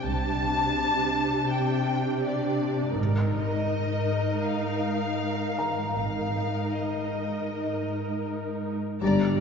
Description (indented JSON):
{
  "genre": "cinematic",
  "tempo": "80 BPM",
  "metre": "4/4",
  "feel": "straight",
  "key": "unclear",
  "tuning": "A4 = 440 Hz",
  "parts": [
    { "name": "warm studio violin section", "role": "melody", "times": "0.0-9.4 s", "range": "D5 to Bb5", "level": "-30 LUFS", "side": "left 2 dB", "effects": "none" },
    { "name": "warm studio viola section", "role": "accompaniment", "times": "0.0-9.4 s", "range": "G3 to Bb4", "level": "-30 LUFS", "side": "equal", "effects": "none" },
    { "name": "rich studio double bass section", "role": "bass", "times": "0.0-9.4 s", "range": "G1 to C2", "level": "-34 LUFS", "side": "right 2 dB", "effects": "none" },
    { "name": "rich symphonic cello section", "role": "bass", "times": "0.0-8.8 s", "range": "Ab2 to C3", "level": "-30 LUFS", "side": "equal", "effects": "none" },
    { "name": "felt-muted upright piano", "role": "texture", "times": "5.6-9.0 s", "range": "Bb5", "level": "-38 LUFS", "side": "right 1 dB", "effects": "none" },
    { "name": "rich studio violin section", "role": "second line", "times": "9.0-9.4 s", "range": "D5", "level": "-31 LUFS", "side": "equal", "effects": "none" },
    { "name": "mellow French horn section", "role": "sustained chords", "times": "9.0-9.4 s", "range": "G3 to D4", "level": "-28 LUFS", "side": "left 3 dB", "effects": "none" },
    { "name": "Celtic harp", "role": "riff", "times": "9.0-9.4 s", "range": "G2", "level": "-24 LUFS", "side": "left 6 dB", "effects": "none" }
  ],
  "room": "wet church reverb, RT60 2.6 s",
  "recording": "heard from further back in the room, nothing above 7.5 kHz",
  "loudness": "-25 LUFS",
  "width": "side -6 dB against mid",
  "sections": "0.0-9.0 A section",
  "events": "band accent 9.0-9.4",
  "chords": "0.0 Csus2; 3.0 Absus2",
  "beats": "| 0.04 0.78 1.51 2.24 | 2.98 3.71 4.44 5.19 | 5.95 6.72 7.49 8.25 | 9.01"
}